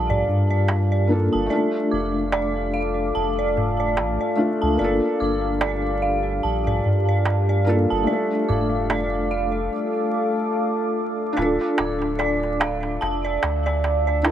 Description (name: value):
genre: trip hop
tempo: 73 BPM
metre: 4/4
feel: swing 58% on 16ths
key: D minor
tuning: A4 = 440 Hz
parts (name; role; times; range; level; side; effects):
- felt-muted upright piano; accompaniment; 0.0-14.3 s; A3 to A4; -25 LUFS; left 1 dB; harmonic tremolo, low-pass filter, tape echo
- deep dark ambient pad; sustained chords; 0.0-14.3 s; G4 to E6; -26 LUFS; left 2 dB; chorus, built-in reverb
- dark detuned synth bell; arpeggios; 0.0-14.3 s; D5 to D6; -26 LUFS; right 3 dB; chorus, phaser, tape echo
- soft dub sub bass; bass; 0.0-14.3 s; D1 to G2; -24 LUFS; equal; none
- darbuka; percussion; 0.1-14.3 s; none; -27 LUFS; right 1 dB; none
room: light reverb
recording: vinyl crackle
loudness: -19 LUFS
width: side -10 dB against mid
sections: 0.0-11.4 A section; 11.4-14.3 B section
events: none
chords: 0.0 Gm7; 1.5 Dm/F; 4.8 Gm7; 8.1 Dm/F; 11.4 Dmadd9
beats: 0.68 | 1.50 2.33 3.15 3.97 | 4.79 5.61 6.43 7.26 | 8.08 8.90 9.72 10.54 | 11.37 12.19 13.01 13.83